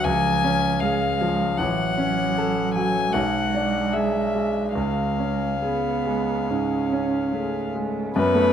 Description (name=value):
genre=classical, slow romantic movement for piano trio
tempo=68-79 BPM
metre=4/4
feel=rubato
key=unclear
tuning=A4 = 440 Hz
part: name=warm violin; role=melody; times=0.0-8.5 s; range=B4 to G#5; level=-25 LUFS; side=left 5 dB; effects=none
part: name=dark cello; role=second line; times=0.0-8.5 s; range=E#3 to C#4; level=-27 LUFS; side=right 8 dB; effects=none
part: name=bright concert grand piano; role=accompaniment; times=0.0-8.5 s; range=A1 to A4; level=-24 LUFS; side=left 1 dB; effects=none
room=moderate recital hall reverb, RT60 1.6 s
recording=close, detailed microphones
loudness=-21 LUFS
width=side -8 dB against mid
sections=0.0-8.1 A section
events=none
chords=0.1 C#; 1.6 F#m/A; 3.1 G#m7b5/B; 4.8 C#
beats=0.06 0.82 | 1.59 2.37 3.14 3.93 | 4.75 5.61 6.48 7.32 | 8.15